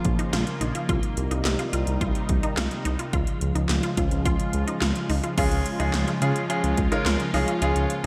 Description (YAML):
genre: synth-pop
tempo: 107 BPM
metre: 4/4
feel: straight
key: unclear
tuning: A4 = 439 Hz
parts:
  - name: sweeping resonant pad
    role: sustained chords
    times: 0.0-8.1 s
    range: C3 to F4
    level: -31 LUFS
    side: equal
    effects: chorus
  - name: 80s electronic pad drums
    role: drums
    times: 0.0-8.0 s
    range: crash cymbal, handclaps, hi-hat, kick drum, snare drum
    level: -30 LUFS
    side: equal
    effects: none
  - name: smooth synth bass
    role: bass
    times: 0.1-8.1 s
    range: Bb1 to Db3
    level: -29 LUFS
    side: equal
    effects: none
  - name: resonant blip pluck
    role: arpeggios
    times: 0.2-8.1 s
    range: Eb4 to F4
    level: -35 LUFS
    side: equal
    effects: chorus, digital delay
  - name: bright concert grand piano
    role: accompaniment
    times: 5.4-8.1 s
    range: Ab3 to Bb4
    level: -29 LUFS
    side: equal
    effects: none
room: moderate lush hall reverb, RT60 2.0 s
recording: big arena sound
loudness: -25 LUFS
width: mono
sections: 0.0-5.4 A section; 5.4-8.1 B section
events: none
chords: 0.0 Bbm; 0.9 Cm7; 3.1 Db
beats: 0.33 | 0.89 1.45 2.01 2.57 | 3.13 3.69 4.25 4.82 | 5.38 5.94 6.50 7.06 | 7.62